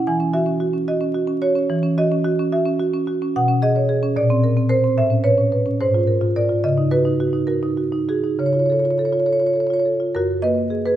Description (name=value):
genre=classical, contemporary piece for solo marimba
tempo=72 BPM (dotted quarters)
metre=6/8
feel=rubato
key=E major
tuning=A4 = 440 Hz
part: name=marimba with medium mallets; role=solo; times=0.0-11.0 s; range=F#2 to G#5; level=-17 LUFS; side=right 1 dB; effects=none
room=moderate recital hall reverb, RT60 1.7 s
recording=minimal, uncompressed stereo recording, vinyl crackle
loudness=-17 LUFS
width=side -12 dB against mid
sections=0.0-10.1 A section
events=none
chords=0.1 Esus2; 3.3 B69; 4.2 A#add9; 5.0 Aadd9; 5.8 G#69; 6.6 C#9sus4; 8.4 C#aug; 10.1 F#add9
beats=| 0.06 0.88 | 1.69 2.51 | 3.33 4.15 | 4.97 5.80 | 6.64 7.48 | 8.38 9.27 | 10.15